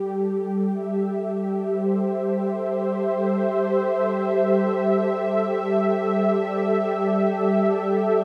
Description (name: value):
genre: ambient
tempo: free time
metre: none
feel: none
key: unclear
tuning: A4 = 439 Hz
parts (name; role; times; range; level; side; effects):
- warm analog pad; solo; 0.0-8.2 s; G3 to E5; -23 LUFS; equal; chorus, delay
room: wet huge ambient reverb, RT60 9.0 s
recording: cassette tape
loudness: -23 LUFS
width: mono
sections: 0.0-8.2 A section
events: none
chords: 0.0 Am7/G